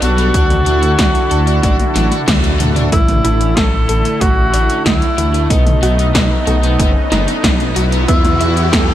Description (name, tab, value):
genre	synthwave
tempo	93 BPM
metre	4/4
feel	straight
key	unclear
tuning	A4 = 444 Hz
part	breathy tenor saxophone	melody	0.0-8.9 s	D#4 to A4	-18 LUFS	equal	digital delay
part	lush unison pad	sustained chords	0.0-8.9 s	D3 to B4	-22 LUFS	equal	chorus, sidechain pumping
part	overdriven electric guitar	riff	0.0-8.8 s	G3 to A4	-25 LUFS	equal	wide subtle chorus, low-pass filter, tape echo
part	dark detuned saw bass	bass	0.0-8.9 s	F#1 to E2	-16 LUFS	equal	sidechain pumping
part	80s electronic pad drums	drums	0.0-8.9 s	hi-hat, snare drum, toms	-19 LUFS	equal	gated reverb on snare and toms
part	electronic kick drum	drums	0.3-8.9 s	none	-16 LUFS	equal	overdrive
part	analog pluck	arpeggios	2.9-8.9 s	A3 to E5	-24 LUFS	right 3 dB	none
part	riser	sound effects	5.2-8.9 s	none	-26 LUFS	right 1 dB	none
room	light reverb, digital ambience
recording	none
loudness	-11 LUFS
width	side -12 dB against mid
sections	0.0-2.9 A section; 2.9-8.9 B section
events	drum fill 1.6-2.9; band accent 2.3-2.6; filter sweep on overdriven electric guitar 2.9-8.9; riser 5.2-8.9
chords	0.3 Dadd9; 2.9 Asus4; 5.5 B7; 8.1 Esus2